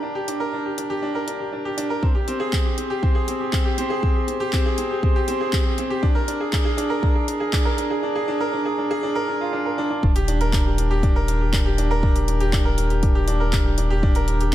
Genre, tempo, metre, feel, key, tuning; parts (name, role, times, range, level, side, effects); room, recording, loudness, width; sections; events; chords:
piano and strings electronica; 120 BPM; 4/4; straight; A4 = 440 Hz
bright concert grand piano; riff; 0.0-14.5 s; C4 to Bb4; -23 LUFS; equal; tape echo
deep house drum kit; drums; 0.3-14.5 s; handclaps, hi-hat; -30 LUFS; equal
electronic kick drum; drums; 2.0-14.1 s; -20 LUFS; equal
warm sub bass; bass; 10.0-14.5 s; Eb1; -21 LUFS; equal; sidechain pumping
light reverb; -19 LUFS; side -13 dB against mid
0.0-10.0 A section; 10.0-14.5 B section
build-up 0.0-10.0; break 8.0-10.0; drop 10.0-14.5
0.0 Dsus4; 2.0 Abmaj7; 6.0 Bb7; 10.0 Ebmaj7